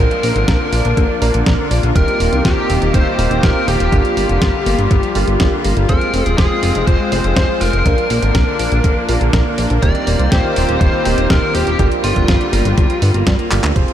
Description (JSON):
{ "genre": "italo disco", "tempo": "122 BPM", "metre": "4/4", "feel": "straight", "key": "unclear", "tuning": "A4 = 439 Hz", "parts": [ { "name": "biting lead guitar", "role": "melody", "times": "0.0-13.5 s", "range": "F4 to D5", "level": "-20 LUFS", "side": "equal", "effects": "overdrive, ping-pong delay" }, { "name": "warm analog pad", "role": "sustained chords", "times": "0.0-13.7 s", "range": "Eb3 to G4", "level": "-21 LUFS", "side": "left 2 dB", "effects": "chorus" }, { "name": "direct-recorded clean electric guitar", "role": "arpeggios", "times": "0.0-13.7 s", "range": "D3 to C5", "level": "-25 LUFS", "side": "left 3 dB", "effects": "lush chorus, tape echo" }, { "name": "warm concert grand piano", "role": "stabs", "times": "0.0-13.9 s", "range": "Bb3 to C5", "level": "-24 LUFS", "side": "right 5 dB", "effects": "tape echo" }, { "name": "chorused synth bass", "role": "bass", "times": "0.0-13.8 s", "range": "Eb1 to G2", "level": "-17 LUFS", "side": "equal", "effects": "none" }, { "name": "downlifter", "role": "sound effects", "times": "0.0-2.0 s", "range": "none", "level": "-36 LUFS", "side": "equal", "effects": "none" }, { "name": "clean 12-bit digital drum machine", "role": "drums", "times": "0.1-13.9 s", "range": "handclaps, hi-hat, snare drum", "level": "-23 LUFS", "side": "equal", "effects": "none" }, { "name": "electronic kick drum", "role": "drums", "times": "0.5-13.9 s", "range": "none", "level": "-16 LUFS", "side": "equal", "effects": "none" } ], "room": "moderate huge ambient reverb, RT60 7.7 s", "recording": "dreamy mix soaked in reverb", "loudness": "-12 LUFS", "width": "side -10 dB against mid", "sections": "0.0-13.8 A section", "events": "drum fill 13.5", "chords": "0.0 Bb; 2.0 Eb6; 3.9 Gm7; 5.9 Fm; 7.9 Bb; 9.8 Eb6; 11.8 Gm7", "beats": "0.48 0.97 1.47 | 1.96 2.45 2.94 3.43 | 3.92 4.42 4.91 5.40 | 5.89 6.38 6.87 7.37 | 7.86 8.35 8.84 9.33 | 9.82 10.32 10.81 11.30 | 11.79 12.28 12.78 13.27 | 13.76" }